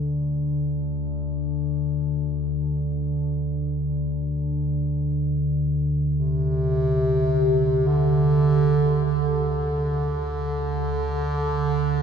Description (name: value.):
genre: dark ambient drone.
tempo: free time.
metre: none.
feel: none.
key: unclear.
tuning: A4 = 438 Hz.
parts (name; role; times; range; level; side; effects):
deep rumbling drone; drone; 0.0-12.0 s; D2 to D3; -23 LUFS; left 1 dB; built-in reverb.
warm bass clarinet; melody; 6.1-12.0 s; C3 to D3; -22 LUFS; right 2 dB; ping-pong delay.
room: wet huge ambient reverb, RT60 7.9 s.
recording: none.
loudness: -21 LUFS.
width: side -7 dB against mid.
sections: 0.0-12.0 A section.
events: none.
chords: none.